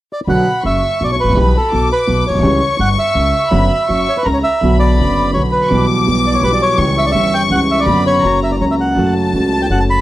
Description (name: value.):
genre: tango.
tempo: 166 BPM.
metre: 3/4.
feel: rubato.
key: B minor.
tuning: A4 = 440 Hz.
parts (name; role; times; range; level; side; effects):
bandoneon; melody; 0.1-10.0 s; A4 to B5; -16 LUFS; equal; none.
warm studio violin section; second line; 0.3-10.0 s; A5 to D6; -20 LUFS; left 4 dB; none.
warm concert grand piano; accompaniment; 0.3-10.0 s; F#1 to G4; -16 LUFS; right 2 dB; none.
upright bass; bass; 0.3-10.0 s; F#1 to C#2; -18 LUFS; equal; none.
room: small room ambience.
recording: dry, close 1970s-style studio recording.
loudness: -12 LUFS.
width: side -15 dB against mid.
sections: 0.3-4.6 A section; 4.6-10.0 B section.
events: none.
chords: 0.3 Bm; 1.4 Em/B; 2.4 C#dim; 3.5 Bm/F#; 3.9 F#; 4.6 Bm; 5.7 Em/B; 6.8 C#dim; 7.9 Bm/F#; 8.2 F#; 9.0 F#m.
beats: | 0.28 0.65 1.01 | 1.37 1.73 2.08 | 2.44 2.80 3.16 | 3.52 3.89 4.26 | 4.63 4.99 5.35 | 5.71 6.07 6.43 | 6.79 7.15 7.51 | 7.87 8.23 8.60 | 8.97 9.34 9.70.